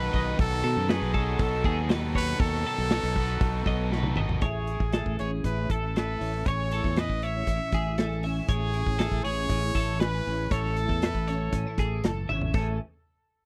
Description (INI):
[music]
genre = math rock and midwest emo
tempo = 118 BPM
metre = 4/4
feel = straight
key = A lydian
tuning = A4 = 440 Hz
[part]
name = brilliant trumpet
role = melody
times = 0.0-12.0 s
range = G#4 to E5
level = -34 LUFS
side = equal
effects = none
[part]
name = twelve-string electric guitar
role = arpeggios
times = 0.0-12.8 s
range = G#4 to E5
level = -38 LUFS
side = equal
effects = lush chorus
[part]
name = crunchy overdriven guitar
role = riff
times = 0.0-4.4 s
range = B2 to A4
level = -36 LUFS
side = equal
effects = none
[part]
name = modern bright fingered electric bass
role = bass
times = 0.0-12.8 s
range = F#1 to B2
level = -32 LUFS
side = equal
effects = none
[part]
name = modern studio drum kit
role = drums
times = 0.1-12.7 s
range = crash cymbal, hi-hat, kick drum, snare drum, toms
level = -30 LUFS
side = equal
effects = none
[part]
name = twelve-string electric guitar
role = accompaniment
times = 4.4-12.8 s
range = A2 to A4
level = -37 LUFS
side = equal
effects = ensemble chorus
[sound]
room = little or no reverb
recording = dry, close 1970s-style studio recording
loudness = -27 LUFS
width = mono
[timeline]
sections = 0.0-4.4 A section; 4.4-12.5 B section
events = drum fill 3.9-4.4, 12.3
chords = 0.0 B9; 4.4 Amaj7